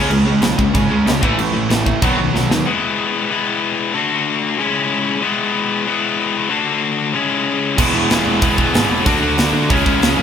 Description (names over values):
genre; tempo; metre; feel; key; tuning
punk rock; 188 BPM; 4/4; straight; E mixolydian; A4 = 441 Hz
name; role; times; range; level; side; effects
distorted electric guitar; riff; 0.0-10.2 s; A2 to F#4; -17 LUFS; left 4 dB; overdrive
distorted electric guitar; riff; 0.0-2.6, 7.8-10.2 s; E2 to D4; -22 LUFS; right 7 dB; distortion
high-gain distorted guitar; riff; 0.0-2.7, 7.8-10.2 s; E2 to D4; -22 LUFS; right 4 dB; distortion
fuzz picked electric bass; bass; 0.0-2.6, 7.8-10.2 s; E1 to D3; -22 LUFS; right 1 dB; overdrive
tight metal drum kit; drums; 0.1-2.6, 7.8-10.1 s; crash cymbal, hi-hat, kick drum, snare drum; -18 LUFS; right 1 dB; none
room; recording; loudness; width
light reverb; band playing live in one room; -14 LUFS; side -8 dB against mid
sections
0.0-2.7 A section; 2.7-10.2 B section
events
drum fill 2.3-2.7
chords
0.0 C#5; 1.2 A5; 2.0 B; 2.7 E; 3.9 D; 4.6 C#m; 5.2 E; 6.5 D; 7.1 C#m; 7.8 E; 9.1 D; 9.7 C#m